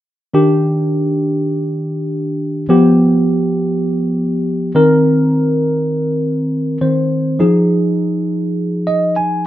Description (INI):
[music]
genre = pop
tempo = 102 BPM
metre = 4/4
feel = straight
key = Eb major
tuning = A4 = 440 Hz
[part]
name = tine electric piano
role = accompaniment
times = 0.3-9.5 s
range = Eb3 to Ab5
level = -13 LUFS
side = equal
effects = overdrive, wide subtle chorus
[sound]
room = moderate studio reverb, RT60 0.6 s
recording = rough home demo mix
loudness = -13 LUFS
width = side -13 dB against mid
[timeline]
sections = 0.3-9.5 A section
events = tine electric piano fill 8.6-9.5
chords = 0.3 Ebmaj7; 2.7 G7; 4.8 Cm7; 7.4 Fm7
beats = | 0.34 0.93 1.52 2.11 | 2.69 3.28 3.87 4.46 | 5.05 5.63 6.22 6.81 | 7.40 7.99 8.58 9.16